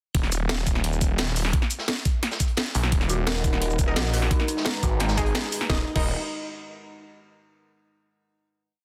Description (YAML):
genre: dark technical drum and bass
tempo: 173 BPM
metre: 4/4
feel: straight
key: Eb minor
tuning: A4 = 439 Hz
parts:
  - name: snarling distorted saw bass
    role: bass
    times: 0.1-6.1 s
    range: Eb1 to Cb2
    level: -28 LUFS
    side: equal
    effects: distortion, overdrive, sidechain pumping
  - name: crunchy breakbeat drum kit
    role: drums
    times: 0.1-5.6 s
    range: hi-hat, snare drum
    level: -38 LUFS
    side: equal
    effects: none
  - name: drum and bass drum kit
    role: drums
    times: 0.1-6.0 s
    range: cabasa, crash cymbal, hi-hat, snare drum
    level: -30 LUFS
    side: equal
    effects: overdrive
  - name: electronic kick drum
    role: drums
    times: 0.1-6.0 s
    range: none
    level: -27 LUFS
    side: equal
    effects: overdrive
  - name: dark analog pad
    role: sustained chords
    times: 3.3-5.9 s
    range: Ab3 to Bb5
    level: -36 LUFS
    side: equal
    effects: chorus, sidechain pumping
  - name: dark detuned synth bell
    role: arpeggios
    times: 3.1-6.1 s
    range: Eb4 to Cb5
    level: -36 LUFS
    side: equal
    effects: chorus, sidechain pumping, tape echo
  - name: orchestra-hit-like synth stab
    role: stabs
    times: 3.9-6.1 s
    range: Ab3 to Eb5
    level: -35 LUFS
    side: equal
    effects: built-in reverb, tape echo
room: light reverb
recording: dense, heavily limited modern master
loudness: -25 LUFS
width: mono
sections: 0.1-5.7 drop; 5.7-7.1 final chord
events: drop 0.1-5.7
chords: 0.1 N.C.; 2.9 Ebm; 4.3 Abmadd9; 5.7 Ebm